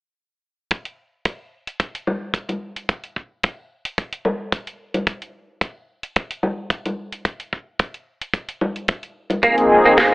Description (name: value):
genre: nu-disco, nu disco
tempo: 110 BPM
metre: 4/4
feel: swing 54% on 16ths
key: unclear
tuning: A4 = 440 Hz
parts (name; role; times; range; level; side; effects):
- house drum kit; drums; 0.7-10.1 s; hi-hat, snare drum; -26 LUFS; equal; none
- kick drum; drums; 0.7-10.1 s; none; -21 LUFS; equal; none
- congas; percussion; 2.1-9.4 s; none; -24 LUFS; left 1 dB; none
- warm analog pad; accompaniment; 9.4-10.1 s; F3 to Ab4; -13 LUFS; equal; chorus, tremolo, sidechain pumping
- direct-recorded clean electric guitar; riff; 9.4-10.1 s; Bb3; -16 LUFS; right 1 dB; ensemble chorus
room: moderate plate reverb, RT60 1.5 s, small room ambience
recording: echo-heavy mix, telephone sound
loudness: -20 LUFS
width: side -21 dB against mid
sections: 0.7-10.1 A section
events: none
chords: 0.7 N.C.; 9.4 Bb9sus4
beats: | 0.71 1.25 1.80 2.34 | 2.89 3.44 3.98 4.53 | 5.07 5.62 6.16 6.71 | 7.25 7.80 8.34 8.89 | 9.44 9.98